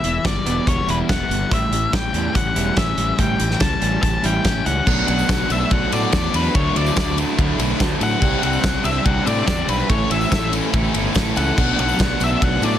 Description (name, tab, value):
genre	indie rock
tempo	143 BPM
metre	4/4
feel	straight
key	unclear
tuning	A4 = 440 Hz
part	octave-fuzz lead guitar	melody	0.0-12.8 s	B4 to A5	-23 LUFS	left 3 dB	distortion, digital delay
part	crunchy overdriven guitar	riff	0.0-12.8 s	A2 to E4	-25 LUFS	left 7 dB	none
part	electric guitar through a small old amp	riff	0.0-12.8 s	E2 to A4	-24 LUFS	right 7 dB	wide subtle chorus, digital delay
part	fuzz fingered electric bass	bass	0.0-12.7 s	E1 to A2	-24 LUFS	equal	overdrive
part	loose indie drum kit	drums	0.0-12.7 s	crash cymbal, hi-hat, kick drum, ride cymbal, snare drum	-21 LUFS	equal	none
part	tambourine	percussion	4.9-12.8 s	none	-39 LUFS	right 5 dB	none
room	little or no reverb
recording	dense, heavily limited modern master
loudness	-16 LUFS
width	side -10 dB against mid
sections	0.0-4.9 A section; 4.9-12.8 B section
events	none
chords	0.0 Em; 1.5 A7; 4.9 Bm7; 8.2 Csus2; 9.9 A; 11.6 Bm7